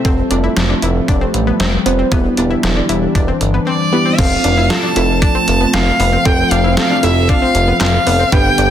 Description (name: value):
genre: synth-pop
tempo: 116 BPM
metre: 4/4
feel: straight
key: unclear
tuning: A4 = 440 Hz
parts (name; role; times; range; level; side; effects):
- muted felt-like synth keys; accompaniment; 0.0-8.7 s; B3 to C5; -19 LUFS; right 3 dB; chorus
- chorused pulse-width pad; sustained chords; 0.0-8.7 s; D3 to D4; -19 LUFS; left 1 dB; none
- analog pluck; arpeggios; 0.0-8.7 s; B3 to E4; -22 LUFS; left 4 dB; chorus, tape echo
- chorused synth bass; bass; 0.0-8.7 s; E1 to A1; -17 LUFS; equal; none
- detuned 8-bit digital drum machine; drums; 0.0-8.7 s; crash cymbal, handclaps, hi-hat, kick drum, snare drum; -17 LUFS; equal; none
- clear violin; melody; 3.7-8.7 s; D5 to A5; -16 LUFS; equal; tape echo
room: light reverb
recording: dense, heavily limited modern master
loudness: -11 LUFS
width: side -10 dB against mid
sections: 0.0-4.2 A section; 4.2-8.7 B section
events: none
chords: 0.0 Fadd9; 2.1 Em7; 4.2 F